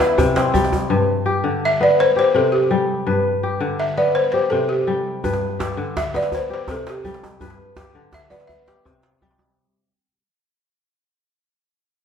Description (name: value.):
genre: west african traditional, West African string and xylophone music.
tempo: 111 BPM (dotted quarters).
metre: 12/8.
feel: straight.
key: G major.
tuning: A4 = 440 Hz.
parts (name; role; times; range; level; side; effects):
balafon; melody; 0.0-9.2 s; G4 to E5; -19 LUFS; equal; none.
kora; arpeggios; 0.0-10.1 s; G2 to B4; -20 LUFS; left 2 dB; none.
djembe; percussion; 0.0-0.9, 5.2-9.5 s; none; -24 LUFS; right 1 dB; none.
room: wet large studio reverb, RT60 1.3 s.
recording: band playing live in one room, lossy compression artefacts.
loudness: -17 LUFS.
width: side -7 dB against mid.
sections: 0.9-9.6 A section.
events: fade-out 0.9-9.6.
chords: 0.0 C; 0.9 G; 2.0 C5; 3.1 G; 4.2 C5; 5.2 G; 6.3 C5; 7.4 G; 8.5 C.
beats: 0.36 | 0.90 1.44 1.99 2.53 | 3.07 3.61 4.15 4.70 | 5.24 5.78 6.32 6.87 | 7.41 7.95 8.50 9.04.